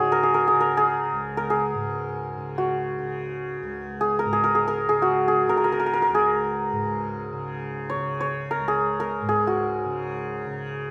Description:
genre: indian classical, Hindustani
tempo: free time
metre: none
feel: none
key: Db raga durga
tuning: A4 = 442 Hz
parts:
  - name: santur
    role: melody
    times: 0.0-10.9 s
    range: Db4 to Db5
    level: -25 LUFS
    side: equal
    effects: none
  - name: tanpura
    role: drone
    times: 0.0-10.9 s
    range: Db2 to Db3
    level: -34 LUFS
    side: equal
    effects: none
room: moderate recital hall reverb, RT60 1.4 s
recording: none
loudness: -24 LUFS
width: mono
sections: 0.0-10.9 A section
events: none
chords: none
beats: free time

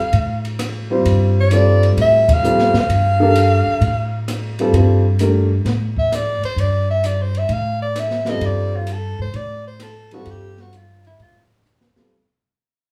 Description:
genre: modal jazz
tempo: 130 BPM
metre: 4/4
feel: swing 68% on 8ths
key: unclear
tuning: A4 = 435 Hz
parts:
  - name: bright soprano saxophone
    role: melody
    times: 0.0-11.4 s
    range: E4 to F5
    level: -21 LUFS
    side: equal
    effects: none
  - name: upright bass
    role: bass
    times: 0.1-12.0 s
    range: G2 to A2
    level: -20 LUFS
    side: equal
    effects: none
  - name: open jazz drum kit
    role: drums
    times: 0.1-12.1 s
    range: hi-hat, kick drum, ride cymbal, rim click, snare drum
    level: -28 LUFS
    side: equal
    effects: none
  - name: warm baby grand piano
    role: accompaniment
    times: 0.9-5.5, 8.3-12.1 s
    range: G3 to C5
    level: -21 LUFS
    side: equal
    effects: none
room: moderate studio ambience, RT60 0.5 s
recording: heard from further back in the room, small room ambience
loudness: -17 LUFS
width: mono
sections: 0.0-4.7 A section; 4.7-12.1 B section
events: band accent 2.2; fade-out 4.7-12.1; soprano saxophone solo 4.7-12.1; drum fill 11.7-12.1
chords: 0.0 Dm7; 4.7 Dm7/G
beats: 0.13 0.59 | 1.05 1.51 1.97 2.43 | 2.89 3.35 3.81 4.28 | 4.74 5.20 5.66 6.12 | 6.58 7.04 7.50 7.96 | 8.42 8.88 9.35 9.81 | 10.27 10.73 11.19 11.65

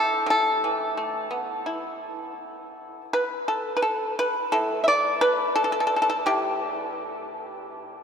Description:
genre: chinese traditional, Chinese solo plucked strings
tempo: 87 BPM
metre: 4/4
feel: rubato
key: unclear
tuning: A4 = 438 Hz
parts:
  - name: pipa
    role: solo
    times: 0.0-8.0 s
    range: A2 to E5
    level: -23 LUFS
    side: equal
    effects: none
room: wet cathedral reverb, RT60 7.1 s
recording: in a vast, echoing space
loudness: -22 LUFS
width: side -7 dB against mid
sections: 0.0-3.1 A section; 3.1-8.0 B section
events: none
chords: none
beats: | 0.30 0.98 1.68 2.41 | 3.14 3.85 4.54 5.24 | 5.92 6.61 7.29 7.97

